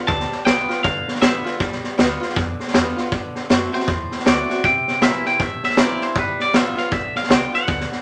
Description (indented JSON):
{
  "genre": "rockabilly",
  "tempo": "158 BPM",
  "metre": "4/4",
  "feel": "swing 61% on 8ths",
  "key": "G mixolydian",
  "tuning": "A4 = 441 Hz",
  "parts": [
    { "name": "twangy electric guitar", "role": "melody", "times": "0.0-8.0 s", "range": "B4 to A5", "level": "-24 LUFS", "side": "equal", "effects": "none" },
    { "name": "picked swing-style acoustic guitar", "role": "accompaniment", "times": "0.0-8.0 s", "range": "G2 to F#4", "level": "-28 LUFS", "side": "equal", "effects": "none" },
    { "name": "upright bass", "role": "bass", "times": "0.1-7.9 s", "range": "G1 to F#2", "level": "-35 LUFS", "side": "equal", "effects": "none" },
    { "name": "vintage drum kit", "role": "drums", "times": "0.1-8.0 s", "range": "hi-hat, kick drum, snare drum", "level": "-22 LUFS", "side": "equal", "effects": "none" }
  ],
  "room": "moderate studio reverb, RT60 0.6 s",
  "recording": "none",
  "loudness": "-19 LUFS",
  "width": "mono",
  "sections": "0.0-8.0 A section",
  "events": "none",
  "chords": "0.0 G7; 3.1 D7; 4.6 C7; 6.2 G7",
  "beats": "| 0.08 0.46 0.84 1.22 | 1.60 1.98 2.36 2.74 | 3.12 3.50 3.88 4.26 | 4.64 5.02 5.40 5.78 | 6.16 6.54 6.92 7.30 | 7.68"
}